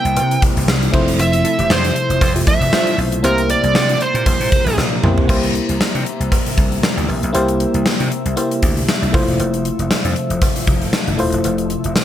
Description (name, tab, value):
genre	1980s-style pop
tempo	117 BPM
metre	4/4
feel	swing 55% on 16ths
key	C mixolydian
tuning	A4 = 440 Hz
part	high-gain lead guitar	melody	0.0-4.7 s	Bb4 to G5	-19 LUFS	right 2 dB	distortion, digital delay
part	FM electric piano	accompaniment	0.0-12.0 s	F3 to C5	-21 LUFS	left 1 dB	chorus
part	glassy FM pad	sustained chords	0.0-12.0 s	C3 to E5	-24 LUFS	left 1 dB	ensemble chorus, built-in reverb
part	vintage slap bass	bass	0.0-12.0 s	Eb1 to C3	-20 LUFS	equal	none
part	gated 80s drum kit	drums	0.1-12.0 s	crash cymbal, hi-hat, kick drum, snare drum, tambourine, toms	-18 LUFS	equal	gated reverb
part	cowbell	percussion	0.2-12.0 s	none	-31 LUFS	right 5 dB	none
part	funky polysynth comp	stabs	1.4-2.9 s	C3 to C5	-24 LUFS	right 1 dB	chorus, digital delay
room	light reverb, small room ambience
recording	none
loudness	-14 LUFS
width	side -11 dB against mid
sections	0.0-5.3 A section; 5.3-12.0 B section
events	drum fill 4.8-5.3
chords	0.0 C7; 0.9 Fmaj7; 3.2 C7; 9.1 Fmaj7